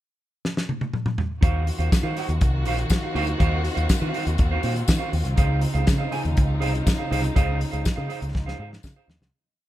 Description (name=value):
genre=disco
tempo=121 BPM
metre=4/4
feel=straight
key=Eb dorian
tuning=A4 = 443 Hz
part: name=warm soul drum kit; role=drums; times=0.5-9.3 s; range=hi-hat, kick drum, snare drum, toms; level=-23 LUFS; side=equal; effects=none
part: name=mellow electric guitar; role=accompaniment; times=1.4-9.2 s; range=Eb4 to Ab5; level=-30 LUFS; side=right 4 dB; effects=none
part: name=dark symphonic string section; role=sustained chords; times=1.4-9.3 s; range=Db3 to Gb4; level=-30 LUFS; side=equal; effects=none
part: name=picked electric bass with an envelope filter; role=bass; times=1.4-9.3 s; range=Bb1 to Eb3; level=-24 LUFS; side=equal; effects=none
part: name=tambourine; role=percussion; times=1.9-8.9 s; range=none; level=-38 LUFS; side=left 10 dB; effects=none
room=light reverb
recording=none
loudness=-21 LUFS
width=side -14 dB against mid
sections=0.0-1.4 pickup bar; 1.4-9.3 verse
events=drum fill 0.4-1.4, 8.3-9.3; fade-out 7.4-9.3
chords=0.0 N.C.; 1.4 Ebm69; 5.4 Dbmaj9